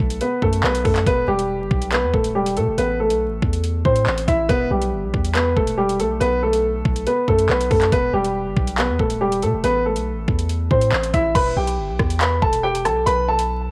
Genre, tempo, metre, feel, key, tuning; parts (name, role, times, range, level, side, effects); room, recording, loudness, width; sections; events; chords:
hip hop, drill; 140 BPM; 4/4; half-time; E harmonic minor; A4 = 440 Hz
dark baby grand piano; melody; 0.0-13.7 s; G3 to B5; -22 LUFS; equal; cassette tape, tape echo
long sustained 808-style bass; bass; 0.0-13.7 s; D#1 to B2; -26 LUFS; equal
drill drum kit; drums; 0.1-13.5 s; crash cymbal, handclaps, hi-hat, kick drum, rim click; -25 LUFS; equal; cassette tape
light reverb, digital ambience; home recording on cassette, vinyl crackle; -20 LUFS; mono
0.0-11.4 A section; 11.4-13.7 B section
0.0 B5; 1.1 Em; 2.8 Am; 4.5 Em; 6.2 B5; 7.9 Em; 9.6 Am; 11.4 Em; 13.1 B5